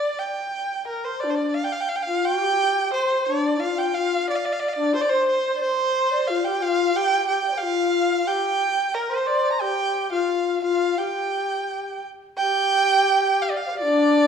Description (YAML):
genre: chinese traditional, Chinese chamber ensemble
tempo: 89 BPM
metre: 4/4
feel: uneven beats, rubato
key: G yu mode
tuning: A4 = 440 Hz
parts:
  - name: clear erhu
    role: melody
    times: 0.0-14.3 s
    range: Bb4 to Bb5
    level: -22 LUFS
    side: right 3 dB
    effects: none
  - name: bright reedy xiao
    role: second line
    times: 0.9-14.3 s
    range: D4 to G5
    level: -23 LUFS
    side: left 4 dB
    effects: none
room: wet recital hall reverb, RT60 1.3 s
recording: small room reverb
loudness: -20 LUFS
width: side -7 dB against mid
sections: 0.0-1.6 A section; 1.6-12.4 B section; 12.4-14.3 C section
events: none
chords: none